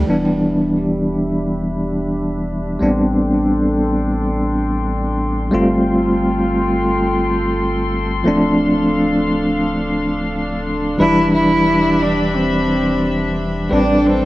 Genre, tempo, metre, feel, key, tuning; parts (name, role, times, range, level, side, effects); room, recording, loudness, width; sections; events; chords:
trip hop; free time; A4 = 440 Hz
bell-like tine electric piano; accompaniment; 0.0-14.3 s; E3 to B4; -17 LUFS; equal; tremolo, cassette tape
rich chamber string section; sustained chords; 0.0-14.3 s; D4 to C6; -22 LUFS; left 1 dB; vintage 12-bit sampler grit, low-pass filter, cassette tape, plate reverb
soft dub sub bass; bass; 0.0-14.3 s; D1 to A1; -25 LUFS; equal
rich cello; melody; 11.0-14.3 s; C4 to E4; -17 LUFS; equal; cassette tape, tape echo, plate reverb
light reverb; home recording on cassette; -15 LUFS; side -17 dB against mid
0.1-14.3 A section
filter sweep on string section 0.1-14.3
0.1 Em7; 2.8 Am11; 5.5 G9sus4; 8.3 Dm7; 11.0 Em7; 13.7 Am11